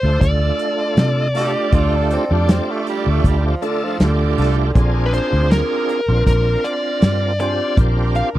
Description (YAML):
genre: straight-eighth soul blues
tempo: 79 BPM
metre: 4/4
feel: straight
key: D minor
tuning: A4 = 439 Hz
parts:
  - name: smooth overdriven lead guitar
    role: melody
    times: 0.0-8.3 s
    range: Bb4 to F5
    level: -22 LUFS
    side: left 1 dB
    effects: none
  - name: bright tonewheel organ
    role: accompaniment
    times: 0.0-8.4 s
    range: A3 to Bb4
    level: -22 LUFS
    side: right 3 dB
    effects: overdrive, chorus vibrato, slow rotary speaker
  - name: vintage muted fingered electric bass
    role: bass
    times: 0.0-8.4 s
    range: Bb1 to C3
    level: -18 LUFS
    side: equal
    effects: none
  - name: warm soul drum kit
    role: drums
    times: 0.2-8.3 s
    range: hi-hat, kick drum, snare drum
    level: -16 LUFS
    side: equal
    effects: none
  - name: brilliant horn section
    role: sustained chords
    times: 1.3-8.4 s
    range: D4 to C5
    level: -29 LUFS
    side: left 2 dB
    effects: none
  - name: raspy tenor saxophone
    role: second line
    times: 1.4-4.9 s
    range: D3 to G4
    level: -25 LUFS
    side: right 3 dB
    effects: none
room: little or no reverb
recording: dry, close 1970s-style studio recording, lossy compression artefacts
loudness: -15 LUFS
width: side -14 dB against mid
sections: 0.0-8.4 A section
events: none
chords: 0.0 Dm; 4.8 Bb7